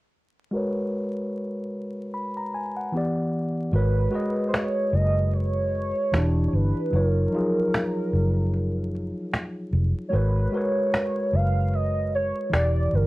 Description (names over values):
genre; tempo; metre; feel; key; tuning
lo-fi hip hop; 75 BPM; 4/4; swing 56% on 16ths; unclear; A4 = 439 Hz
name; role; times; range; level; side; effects
mellow tine electric piano; accompaniment; 0.5-13.1 s; E3 to Cb6; -27 LUFS; left 1 dB; low-pass filter
warm velvety synth lead; melody; 3.7-13.1 s; Bb4 to F5; -27 LUFS; right 2 dB; chorus, low-pass filter
vintage muted fingered electric bass; bass; 3.7-13.1 s; E1 to Ab1; -23 LUFS; equal; none
cajon; drums; 3.7-13.1 s; none; -27 LUFS; equal; none
room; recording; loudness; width
little or no reverb; dry, gritty hardware recording, vinyl crackle; -22 LUFS; side -19 dB against mid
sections
0.5-3.7 A section; 3.7-13.1 B section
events
filter sweep on tine electric piano 0.5-3.7; kick muted 3.7-13.1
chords
0.5 Abm11; 2.9 Em7; 3.7 Abm11; 6.1 Em7; 6.9 Ebm7/Gb; 10.1 Abm11; 12.5 Em7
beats
| 0.53 1.33 2.13 2.93 | 3.73 4.53 5.33 6.13 | 6.93 7.73 8.53 9.33 | 10.13 10.93 11.73 12.53